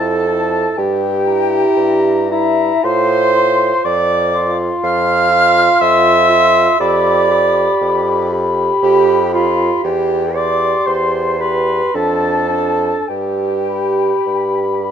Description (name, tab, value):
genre	classical, slow romantic movement for wind quintet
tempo	51-62 BPM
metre	3/4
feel	rubato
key	unclear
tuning	A4 = 439 Hz
part	mellow hollow silver concert flute	melody	0.0-14.9 s	E5 to F6	-20 LUFS	left 8 dB	none
part	mellow oboe	second line	0.0-14.9 s	A5 to C6	-20 LUFS	left 5 dB	none
part	mellow French horn	accompaniment	0.0-14.9 s	D4 to G4	-21 LUFS	equal	none
part	mellow clarinet	accompaniment	0.0-14.9 s	E4 to F5	-16 LUFS	right 5 dB	none
part	warm bassoon	bass	0.0-14.9 s	E2 to A2	-20 LUFS	right 1 dB	none
room	light reverb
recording	close, detailed microphones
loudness	-12 LUFS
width	side -8 dB against mid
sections	0.0-14.9 A section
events	none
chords	0.0 Fmaj7; 0.8 Edim/G; 2.8 F/A; 3.8 Dm9/F; 6.8 G7/F; 9.8 C/E; 12.0 Dm/F; 13.1 G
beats	| 0.78 1.78 2.84 | 3.85 4.83 5.81 | 6.80 7.81 8.83 | 9.84 10.87 11.95 | 13.09 14.27